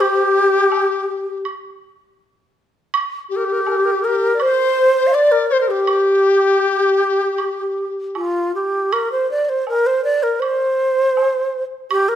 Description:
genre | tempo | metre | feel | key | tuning
chinese traditional, Chinese chamber ensemble | 81 BPM | 4/4 | rubato | G yu mode | A4 = 440 Hz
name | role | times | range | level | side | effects
breathy xiao | melody | 0.0-12.2 s | F4 to D5 | -17 LUFS | right 1 dB | none
large dizi | second line | 0.0-8.2 s | G4 to F5 | -18 LUFS | left 4 dB | none
woodblock | percussion | 0.7-12.1 s | none | -25 LUFS | right 4 dB | none
room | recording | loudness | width
moderate recital hall reverb, RT60 1.5 s | minimal, uncompressed stereo recording | -15 LUFS | side -10 dB against mid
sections
0.0-8.9 A section; 8.9-12.2 B section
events
none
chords
none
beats
0.71 1.45 2.19 | 2.93 3.66 4.39 5.13 | 5.88 6.63 7.39 8.16 | 8.93 9.68 10.43 11.18 | 11.91

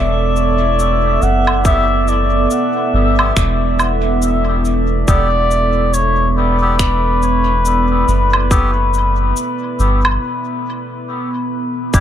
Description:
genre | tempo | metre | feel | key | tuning
ambient dub | 70 BPM | 4/4 | swing 59% on 16ths | unclear | A4 = 440 Hz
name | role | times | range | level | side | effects
trumpet with cup mute | melody | 0.0-10.2 s | B4 to F#5 | -18 LUFS | left 1 dB | dub echo
deep dark ambient pad | sustained chords | 0.0-12.0 s | B3 to E5 | -20 LUFS | right 2 dB | chorus, built-in reverb
soft dub sub bass | bass | 0.0-12.0 s | E1 to G1 | -16 LUFS | equal | none
drifting glass-harmonics texture | texture | 0.0-12.0 s | E5 | -28 LUFS | right 2 dB | chorus, built-in reverb
electronic cabasa, woodblock and finger snaps | drums | 0.4-12.0 s | none | -21 LUFS | right 1 dB | dub echo
melodica | stabs | 1.6-12.0 s | B3 to A4 | -25 LUFS | left 3 dB | vintage 12-bit sampler grit, dub echo
electronic kick drum | drums | 1.6-12.0 s | none | -15 LUFS | equal | none
room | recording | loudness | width
light reverb, digital ambience | none | -13 LUFS | side -10 dB against mid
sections
0.0-11.9 A section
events
break 10.2-11.9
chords
0.0 Gadd9/E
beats
0.79 | 1.65 2.51 3.37 4.22 | 5.08 5.94 6.79 7.65 | 8.51 9.37 10.22 11.08 | 11.94

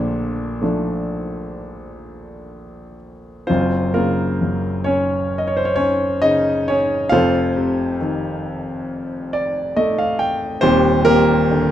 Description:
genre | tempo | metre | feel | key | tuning
classical, lyrical solo piano | 61-70 BPM | 4/4 | rubato | unclear | A4 = 441 Hz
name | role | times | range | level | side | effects
warm grand piano | solo | 0.0-11.7 s | Eb1 to G5 | -17 LUFS | equal | none
room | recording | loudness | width
light reverb | close, detailed microphones | -16 LUFS | side -11 dB against mid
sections
0.0-3.5 A section; 3.5-11.7 A section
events
grand piano fill 8.9-10.6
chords
0.0 Bbmaj7; 3.5 Gbmaj7; 7.1 F7; 10.6 Ebmaj7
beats
0.62 1.55 2.51 | 3.48 4.41 5.32 6.23 | 7.13 8.01 8.89 9.76 | 10.63 11.51

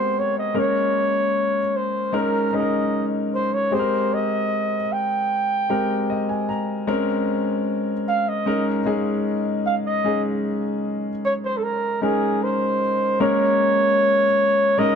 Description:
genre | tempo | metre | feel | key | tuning
soul | 76 BPM | 4/4 | straight | unclear | A4 = 440 Hz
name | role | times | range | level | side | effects
mellow flugelhorn | melody | 0.0-15.0 s | Ab4 to G5 | -21 LUFS | right 1 dB | none
clear grand piano | accompaniment | 0.0-15.0 s | Ab3 to Bb5 | -22 LUFS | left 2 dB | none
room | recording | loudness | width
light reverb | dark, warm production | -19 LUFS | side -7 dB against mid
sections
0.0-13.2 A section; 13.2-15.0 B section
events
grand piano fill 5.7-6.9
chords
0.0 Abmaj9; 0.6 Bbm7; 2.1 Eb7sus4; 3.7 Abmaj9; 6.9 Bbm9; 8.5 Eb7sus4; 13.2 Bbm7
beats
| 0.55 1.34 2.14 2.93 | 3.72 4.51 5.30 6.09 | 6.88 7.68 8.47 9.26 | 10.05 10.84 11.63 12.42 | 13.21 14.00 14.79

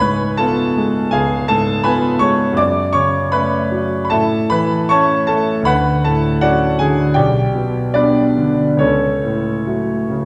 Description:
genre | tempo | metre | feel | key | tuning
classical, romantic character piece for solo piano | 68-85 BPM | 4/4 | rubato | F# minor | A4 = 440 Hz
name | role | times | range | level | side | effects
clear concert grand piano | solo | 0.0-10.2 s | B1 to D6 | -16 LUFS | equal | none
room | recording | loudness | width
wet recital hall reverb, RT60 1.3 s | heard from further back in the room | -16 LUFS | mono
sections
0.0-10.2 A section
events
none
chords
0.0 C#7; 2.6 F#m; 4.1 A; 5.7 Dmaj7; 7.2 G/B; 8.8 F#m/C#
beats
0.39 1.14 1.85 | 2.58 3.32 4.11 4.90 | 5.67 6.43 7.16 7.95 | 8.81 9.67

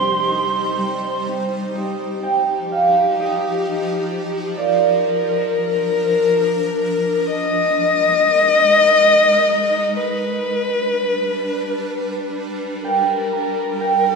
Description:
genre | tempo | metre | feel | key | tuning
celtic folk, Celtic slow air | 43 BPM (dotted quarters) | 6/8 | uneven beats, rubato | unclear | A4 = 440 Hz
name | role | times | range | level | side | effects
mellow wooden whistle | melody | 0.0-1.3 s | C6 | -21 LUFS | right 3 dB | none
dark viola | second line | 0.0-14.2 s | G4 to Eb5 | -18 LUFS | left 3 dB | none
concert harp | accompaniment | 0.0-8.0, 12.8-14.2 s | C3 to Bb5 | -20 LUFS | right 5 dB | none
granular cloud pad | sustained chords | 0.0-14.2 s | F3 to C5 | -26 LUFS | right 1 dB | built-in reverb
room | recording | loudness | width
wet church reverb, RT60 3.0 s | minimal, uncompressed stereo recording | -16 LUFS | side -4 dB against mid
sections
0.0-1.7 A section; 1.7-14.2 B section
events
harp solo 1.7-14.2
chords
0.0 Cm; 1.7 Ebadd9; 4.6 Bb; 7.3 Absus2; 10.0 G; 12.8 Eb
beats
0.28 | 1.74 3.19 | 4.57 5.92 | 7.27 8.61 | 9.98 11.38 | 12.83

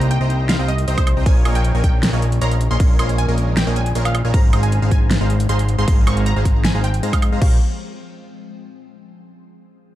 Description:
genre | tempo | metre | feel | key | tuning
future bass | 156 BPM | 4/4 | half-time | Bb dorian | A4 = 440 Hz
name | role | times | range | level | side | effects
wide unison pluck | melody | 0.0-7.6 s | C5 to Db6 | -28 LUFS | right 1 dB | phaser, sidechain pumping, digital delay
ethereal airy pad | sustained chords | 0.0-7.6 s | C3 to Eb4 | -31 LUFS | left 2 dB | ensemble chorus, built-in reverb, phaser, sidechain pumping
supersaw stab | riff | 0.0-7.6 s | Ab3 to C6 | -25 LUFS | right 1 dB | sidechain pumping
fat analog bass | bass | 0.0-7.6 s | Ab1 to Ab2 | -18 LUFS | equal | sidechain pumping
big-room dance drum kit | drums | 0.0-7.5 s | crash cymbal, hi-hat, snare drum, woodblock | -24 LUFS | right 1 dB | overdrive
electronic kick drum | drums | 1.0-7.5 s | none | -16 LUFS | equal | overdrive
room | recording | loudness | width
little or no reverb | dark, warm production | -14 LUFS | side -14 dB against mid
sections
0.0-7.4 A section; 7.4-9.0 B section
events
drop 0.0-7.4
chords
0.0 Cm7; 1.3 Eb9sus4/Bb; 4.3 Ab69; 7.4 Bbm69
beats
0.11 0.49 0.88 | 1.26 1.65 2.03 2.42 | 2.80 3.19 3.57 3.95 | 4.34 4.72 5.11 5.49 | 5.88 6.26 6.65 7.03 | 7.42

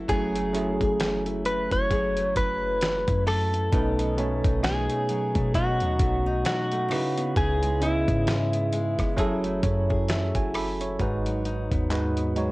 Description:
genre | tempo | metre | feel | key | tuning
contemporary R&B | 66 BPM | 4/4 | swing 58% on 16ths | F# dorian | A4 = 440 Hz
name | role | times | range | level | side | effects
bell-like tine electric piano | accompaniment | 0.0-12.5 s | G#2 to B5 | -29 LUFS | right 2 dB | fast stereo tremolo, cassette tape
nylon-string guitar | arpeggios | 0.0-12.5 s | G#2 to G#4 | -33 LUFS | left 3 dB | cassette tape
clean 808-style bass | bass | 0.0-12.5 s | F#1 to B2 | -29 LUFS | equal | none
direct-recorded clean electric guitar | melody | 0.1-9.6 s | E4 to C#5 | -27 LUFS | equal | cassette tape
dusty soul sampler-style drum kit | drums | 0.1-12.5 s | handclaps, hi-hat, kick drum, rim click, snare drum | -29 LUFS | equal | vintage 12-bit sampler grit, cassette tape
room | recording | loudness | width
digital ambience | home recording on cassette | -23 LUFS | side -20 dB against mid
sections
0.0-11.0 A section; 11.0-12.5 B section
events
tine electric piano fill 9.2-11.0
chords
0.0 F#m9; 3.7 B7; 6.9 C#m7; 9.2 F#m9; 11.0 G#m7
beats
| 0.09 1.00 1.91 2.82 | 3.73 4.63 5.54 6.45 | 7.36 8.27 9.18 10.09 | 11.00 11.91

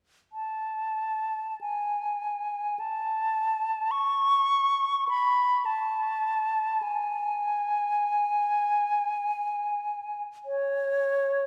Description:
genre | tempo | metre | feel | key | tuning
classical, free, expressive piece for unaccompanied flute | 27-54 BPM | 4/4 | rubato | unclear | A4 = 439 Hz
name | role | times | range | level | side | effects
silver concert flute | solo | 0.3-11.5 s | C#5 to C#6 | -28 LUFS | equal | none
room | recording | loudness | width
wet church reverb, RT60 3.5 s | heard from further back in the room | -28 LUFS | mono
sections
0.3-10.5 A section; 10.5-11.5 B section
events
none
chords
none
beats
| 0.33 1.61 2.78 3.91 | 5.08 6.24 7.44 8.73 | 10.45

